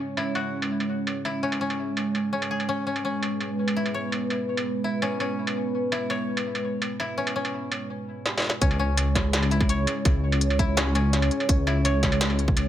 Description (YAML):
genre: half-time drum and bass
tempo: 167 BPM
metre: 4/4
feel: half-time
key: C# minor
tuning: A4 = 440 Hz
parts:
  - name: dark analog pad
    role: sustained chords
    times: 0.0-12.7 s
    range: G#3 to C#5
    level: -28 LUFS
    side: equal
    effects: chorus, sidechain pumping
  - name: koto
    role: arpeggios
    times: 0.0-12.7 s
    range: C#4 to C#5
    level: -31 LUFS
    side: left 3 dB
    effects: low-pass filter, dub echo
  - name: industrial drum kit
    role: drums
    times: 0.2-12.6 s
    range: hi-hat, snare drum, struck metal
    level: -29 LUFS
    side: right 1 dB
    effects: low-pass filter on perc, low-pass filter on hats, low-pass filter on snare
  - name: dark detuned saw bass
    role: bass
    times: 8.6-12.7 s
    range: C#2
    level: -24 LUFS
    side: equal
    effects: none
  - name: electronic kick drum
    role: drums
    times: 8.6-12.6 s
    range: none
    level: -23 LUFS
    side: equal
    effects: none
room: light reverb, digital ambience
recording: none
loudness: -23 LUFS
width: side -11 dB against mid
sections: 0.0-8.6 A section; 8.6-12.7 B section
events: drum fill 8.3-8.6; drop 8.6-12.7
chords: 0.0 C#5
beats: 0.35 0.71 1.07 | 1.43 1.79 2.15 2.51 | 2.87 3.23 3.58 3.94 | 4.30 4.66 5.02 5.38 | 5.74 6.10 6.46 6.82 | 7.18 7.54 7.90 8.26 | 8.62 8.97 9.33 9.69 | 10.05 10.41 10.77 11.13 | 11.49 11.85 12.21 12.57